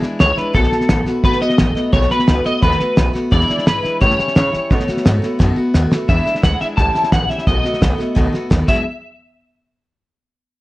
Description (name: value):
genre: rockabilly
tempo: 173 BPM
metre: 4/4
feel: straight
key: unclear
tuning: A4 = 440 Hz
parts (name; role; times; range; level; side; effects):
- picked steel-string acoustic guitar; accompaniment; 0.0-8.8 s; E2 to F#4; -20 LUFS; left 1 dB; none
- upright bass; bass; 0.0-8.8 s; G#1 to C#3; -19 LUFS; equal; none
- cloth-damped thuddy drum kit; drums; 0.0-8.8 s; crash cymbal, hi-hat, kick drum, snare drum; -17 LUFS; equal; vintage 12-bit sampler grit
- electric guitar at the edge of break-up; melody; 0.2-8.8 s; A4 to A5; -18 LUFS; equal; ensemble chorus, tape echo
room: moderate studio reverb, RT60 0.6 s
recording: cassette tape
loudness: -13 LUFS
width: side -18 dB against mid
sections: 0.0-6.1 A section; 6.1-8.9 B section; 8.9-10.2 C section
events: drum fill 5.4-6.1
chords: 0.0 E7; 0.5 B7; 3.3 E7; 4.0 A7; 4.7 B7; 6.1 E7; 6.8 A7; 7.5 B7; 8.7 E9; 8.9 N.C.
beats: 0.20 | 0.55 0.90 1.24 1.59 | 1.94 2.28 2.63 2.97 | 3.32 3.67 4.01 4.36 | 4.71 5.05 5.40 5.74 | 6.09 6.44 6.78 7.13 | 7.47 7.82 8.16 8.51